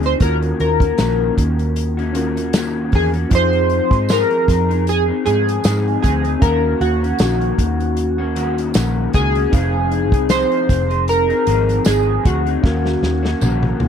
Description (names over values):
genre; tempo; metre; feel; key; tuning
indie pop, bedroom pop; 77 BPM; 4/4; swing 55% on 16ths; Eb dorian; A4 = 438 Hz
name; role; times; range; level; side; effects
electric guitar through a small old amp; accompaniment; 0.0-13.9 s; Eb3 to Ab4; -22 LUFS; left 5 dB; analog chorus, warbly pitch drift
reed electric piano; accompaniment; 0.0-13.9 s; C4 to F5; -28 LUFS; right 4 dB; fast tremolo
vintage muted fingered electric bass; bass; 0.0-13.9 s; F1 to Ab2; -20 LUFS; right 1 dB; none
loose indie drum kit; drums; 0.0-13.9 s; hi-hat, kick drum, snare drum, toms; -18 LUFS; equal; none
chorused retro synth keys; melody; 0.1-13.9 s; Gb4 to C5; -19 LUFS; equal; wide subtle chorus
tambourine; percussion; 1.0-13.6 s; none; -32 LUFS; right 25 dB; none
room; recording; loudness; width
little or no reverb; dry, close 1970s-style studio recording; -14 LUFS; side -8 dB against mid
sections
0.0-13.9 A section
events
drum fill 12.6-13.9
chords
0.2 Ebm7; 3.3 Fm7; 6.4 Ebm7; 9.5 Fm7; 12.6 Ebm7